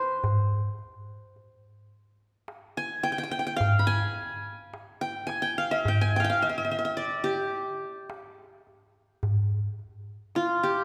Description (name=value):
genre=Turkish makam ensemble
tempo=107 BPM (eighths)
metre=10/8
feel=straight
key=G makam hicaz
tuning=A4 = 440 Hz
part: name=qanun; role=melody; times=0.0-10.8 s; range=F4 to B5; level=-30 LUFS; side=equal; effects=none
part: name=darbuka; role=percussion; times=0.2-10.6 s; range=none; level=-30 LUFS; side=equal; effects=none
room=wet scoring stage reverb, RT60 2.0 s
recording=recorded in a church or concert hall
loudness=-28 LUFS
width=mono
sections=0.0-10.8 A section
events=none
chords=none